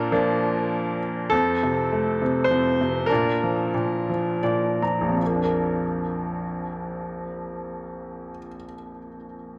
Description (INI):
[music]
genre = classical, lyrical solo piano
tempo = 74-103 BPM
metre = 3/4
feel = rubato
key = Bb major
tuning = A4 = 435 Hz
[part]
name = bright grand piano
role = solo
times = 0.0-9.6 s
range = Bb1 to Bb5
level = -25 LUFS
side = equal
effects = tape echo
[sound]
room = moderate spring reverb, RT60 1.4 s, studio reverb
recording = dark, warm production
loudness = -24 LUFS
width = mono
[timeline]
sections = 0.0-1.3 A section; 1.3-5.2 B section; 5.2-9.6 C section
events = slowing down 1.3-5.2; grand piano fill 4.1-5.2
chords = 0.0 Bb; 1.3 F; 3.1 Bb